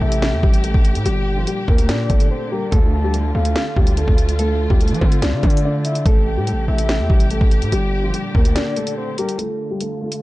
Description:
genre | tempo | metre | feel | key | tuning
hip hop, drill | 144 BPM | 4/4 | half-time | D minor | A4 = 436 Hz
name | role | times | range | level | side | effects
dark concert grand piano | melody | 0.0-10.2 s | F3 to D5 | -24 LUFS | left 1 dB | low-pass filter
soft octave-layered synth lead | second line | 0.0-9.4 s | Bb4 to A5 | -27 LUFS | left 4 dB | chorus, tremolo, digital delay
dark symphonic string section | sustained chords | 0.0-10.2 s | Bb2 to G4 | -27 LUFS | right 1 dB | low-pass filter
distorted 808-style bass | bass | 0.0-8.6 s | G1 to F3 | -19 LUFS | equal | distortion
drill drum kit | drums | 0.1-10.2 s | hi-hat, kick drum, snare drum | -17 LUFS | equal | none
room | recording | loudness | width
little or no reverb | dark, warm production, nothing above 10.3 kHz | -15 LUFS | side -18 dB against mid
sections
0.0-9.4 A section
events
break 2.3-2.7, 8.6-9.4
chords
0.0 Am7; 1.1 Gm; 2.7 Dm; 6.1 Am7; 7.7 Gm; 9.4 Dm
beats
0.22 0.64 | 1.06 1.47 1.89 2.31 | 2.72 3.14 3.56 3.97 | 4.39 4.81 5.22 5.64 | 6.06 6.47 6.89 7.31 | 7.72 8.14 8.56 8.97 | 9.39 9.81

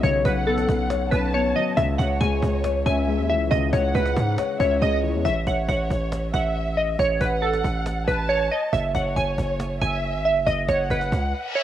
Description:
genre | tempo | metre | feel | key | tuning
hip hop, trap | 138 BPM | 4/4 | half-time | C# minor | A4 = 440 Hz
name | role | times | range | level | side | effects
glassy wavetable pluck | melody | 0.0-11.6 s | A4 to G#5 | -24 LUFS | right 1 dB | chorus, cassette tape
dark concert grand piano | accompaniment | 0.0-5.3 s | C#3 to C#5 | -26 LUFS | left 7 dB | cassette tape
distorted 808-style bass | bass | 0.0-11.3 s | F#1 to G#2 | -25 LUFS | right 1 dB | distortion
cajon | drums | 0.0-11.2 s | none | -31 LUFS | right 1 dB | none
dark studio violin section | second line | 0.2-11.6 s | C#5 to A5 | -30 LUFS | equal | cassette tape, tape echo
reverse cymbal | sound effects | 11.4-11.6 s | none | -28 LUFS | left 3 dB | none
room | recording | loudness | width
light reverb, small room reverb | home recording on cassette | -20 LUFS | side -11 dB against mid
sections
0.0-11.6 A section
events
break 0.0-5.3; silent gap 11.3; reverse cymbal 11.4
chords
0.0 Bsus2; 1.8 C#m; 5.3 A; 8.7 F#5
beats
| 0.03 0.47 0.90 1.34 | 1.77 2.21 2.64 3.08 | 3.51 3.95 4.38 4.82 | 5.25 5.69 6.12 6.55 | 6.99 7.42 7.86 8.29 | 8.73 9.16 9.60 10.03 | 10.47 10.90 11.34

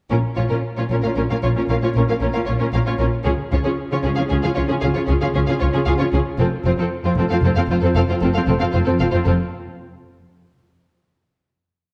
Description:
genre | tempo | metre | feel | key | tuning
cinematic | 76 BPM (dotted quarters) | 12/8 | straight | Bb minor | A4 = 440 Hz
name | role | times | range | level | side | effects
warm symphonic violin section | second line | 0.1-9.3 s | C4 to F5 | -26 LUFS | equal | none
rich symphonic viola section | accompaniment | 0.1-9.3 s | C4 to F4 | -26 LUFS | equal | none
rich studio double bass section | bass | 0.1-9.3 s | F1 to Db2 | -24 LUFS | equal | none
rich symphonic cello section | bass | 0.1-9.3 s | F2 to Db3 | -25 LUFS | equal | none
room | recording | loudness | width
moderate concert hall reverb, RT60 1.8 s | dark, warm production, tape saturation | -19 LUFS | mono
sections
0.1-11.9 A section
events
break 9.5-11.9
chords
0.1 Bbm; 3.3 Db; 6.4 F; 9.5 N.C.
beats
| 0.11 0.90 1.69 2.48 | 3.26 4.05 4.83 5.61 | 6.39 7.17 7.95 8.74

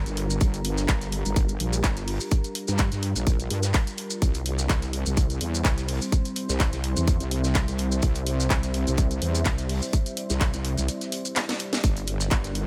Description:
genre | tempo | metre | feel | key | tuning
bass house | 126 BPM | 4/4 | swing 54% on 16ths | unclear | A4 = 440 Hz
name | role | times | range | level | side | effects
deep dark ambient pad | sustained chords | 0.0-12.7 s | G3 to C5 | -38 LUFS | equal | chorus, built-in reverb, sidechain pumping
wobble bass | bass | 0.0-12.7 s | G1 to G2 | -29 LUFS | equal | chorus, overdrive, sidechain pumping
deep dark ambient pad | texture | 0.1-12.7 s | C4 to Bb5 | -40 LUFS | equal | chorus, built-in reverb, sidechain pumping
garage drum kit | drums | 0.1-12.7 s | handclaps, hi-hat, snare drum | -33 LUFS | equal | none
maracas | percussion | 0.1-12.5 s | none | -36 LUFS | equal | none
warm soul drum kit | drums | 0.2-12.7 s | hi-hat, snare drum | -44 LUFS | equal | none
electronic kick drum | drums | 0.4-12.4 s | none | -26 LUFS | equal | none
room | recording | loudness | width
little or no reverb | none | -25 LUFS | mono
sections
0.0-12.7 A section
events
drum fill 11.4-11.8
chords
0.0 Gm7; 4.2 C; 11.8 Gm7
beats
| 0.41 0.89 1.36 1.84 | 2.31 2.79 3.27 3.74 | 4.22 4.70 5.17 5.65 | 6.12 6.60 7.08 7.55 | 8.03 8.51 8.98 9.46 | 9.93 10.41 10.89 11.36 | 11.84 12.31

